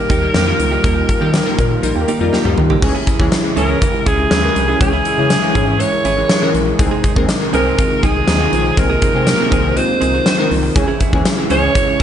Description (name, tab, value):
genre	1980s-style pop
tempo	121 BPM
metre	4/4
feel	straight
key	unclear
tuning	A4 = 440 Hz
part	raspy alto saxophone	melody	0.0-12.0 s	Ab4 to Db5	-18 LUFS	right 1 dB	digital delay
part	glassy digital keys	accompaniment	0.0-12.0 s	Eb3 to Bb4	-20 LUFS	left 2 dB	chorus
part	chorused pulse-width pad	sustained chords	0.0-12.0 s	C3 to G4	-24 LUFS	equal	none
part	direct-recorded clean electric guitar	riff	0.1-12.0 s	Bb3 to Ab4	-26 LUFS	right 8 dB	lush chorus, digital delay
part	solid FM bass	bass	0.1-12.0 s	Ab1 to Eb3	-20 LUFS	equal	none
part	huge arena drum kit	drums	0.1-12.0 s	crash cymbal, hi-hat, kick drum, snare drum, tambourine, toms	-17 LUFS	equal	gated reverb
part	analog synth brass	stabs	2.0-11.7 s	Eb3 to Bb4	-25 LUFS	left 1 dB	chorus, digital delay
room	light reverb, studio ambience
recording	nothing above 10.3 kHz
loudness	-12 LUFS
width	side -9 dB against mid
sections	0.0-2.8 A section; 2.8-12.0 B section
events	band accent 0.8-2.8; drum fill 2.3-2.8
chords	0.0 Eb; 2.8 Dbm; 6.8 Ab; 10.8 Dbm